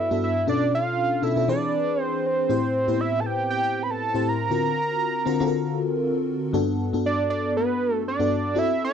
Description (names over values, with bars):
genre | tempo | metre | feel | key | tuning
pop | 119 BPM | 4/4 | swing 54% on 16ths | unclear | A4 = 440 Hz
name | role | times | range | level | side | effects
fat analog lead | melody | 0.0-8.9 s | B4 to B5 | -24 LUFS | right 4 dB | slapback echo
FM electric piano with soft pad layer | accompaniment | 0.0-8.9 s | G2 to C5 | -24 LUFS | left 3 dB | tremolo, wide subtle chorus
room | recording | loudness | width
light reverb | dry, close 1970s-style studio recording | -21 LUFS | side -8 dB against mid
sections
0.0-8.9 A section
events
none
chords
0.5 Bm7b5; 1.5 E7b13; 2.5 Am7; 4.5 D7alt; 6.5 Gmaj7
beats
| 0.47 0.98 1.49 1.99 | 2.50 3.00 3.51 4.01 | 4.52 5.02 5.53 6.03 | 6.54 7.04 7.55 8.06 | 8.56